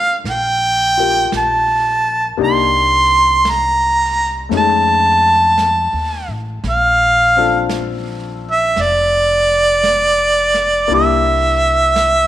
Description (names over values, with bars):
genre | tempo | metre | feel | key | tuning
jazz ballad | 56 BPM | 4/4 | swing 69% on 8ths | unclear | A4 = 440 Hz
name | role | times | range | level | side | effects
clear harmonica | melody | 0.0-12.3 s | D5 to C6 | -12 LUFS | right 1 dB | slapback echo
warm upright piano | accompaniment | 0.0-12.3 s | G#3 to Bb4 | -21 LUFS | left 12 dB | none
upright bass | bass | 0.2-12.3 s | F1 to F2 | -24 LUFS | left 1 dB | none
jazz brush drum kit | drums | 0.3-12.3 s | brushed snare drum, hi-hat, snare drum | -31 LUFS | right 6 dB | none
room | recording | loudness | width
light reverb, small room ambience | 1960s-style stereo with parts hard left and right | -12 LUFS | side -13 dB against mid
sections
0.0-12.3 A section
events
none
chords
0.0 Gm9; 2.4 Cm7; 4.5 F7alt; 6.6 Bbmaj9; 10.9 C7